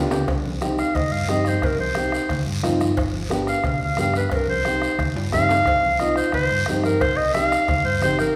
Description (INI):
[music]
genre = latin, cumbia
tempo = 178 BPM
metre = 4/4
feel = straight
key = C harmonic minor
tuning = A4 = 438 Hz
[part]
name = dark upright piano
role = accompaniment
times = 0.0-8.3 s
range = B3 to G4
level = -28 LUFS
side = equal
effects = none
[part]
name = fingered electric bass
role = bass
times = 0.0-8.3 s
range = G1 to G2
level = -30 LUFS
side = equal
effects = none
[part]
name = bombo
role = percussion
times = 0.1-8.4 s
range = none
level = -32 LUFS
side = equal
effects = none
[part]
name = congas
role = percussion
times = 0.1-8.4 s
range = none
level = -32 LUFS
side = equal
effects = none
[part]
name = guiro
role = percussion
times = 0.1-8.4 s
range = none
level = -39 LUFS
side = equal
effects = none
[part]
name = timbales and cowbell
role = percussion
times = 0.1-7.9 s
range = none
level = -36 LUFS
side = equal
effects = none
[part]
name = warm clarinet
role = melody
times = 0.8-8.4 s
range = Bb4 to F5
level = -24 LUFS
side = equal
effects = none
[sound]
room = wet recital hall reverb, RT60 1.4 s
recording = recorded in a church or concert hall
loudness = -21 LUFS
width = mono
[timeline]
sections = 0.3-8.4 A section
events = drum fill 0.0, 5.2-5.7; clarinet solo 0.3-8.4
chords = 0.3 Cm; 3.0 G; 4.3 Cm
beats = | 0.28 0.62 0.95 1.29 | 1.63 1.96 2.30 2.64 | 2.97 3.31 3.65 3.98 | 4.32 4.66 4.99 5.33 | 5.67 6.00 6.34 6.68 | 7.01 7.35 7.68 8.02 | 8.36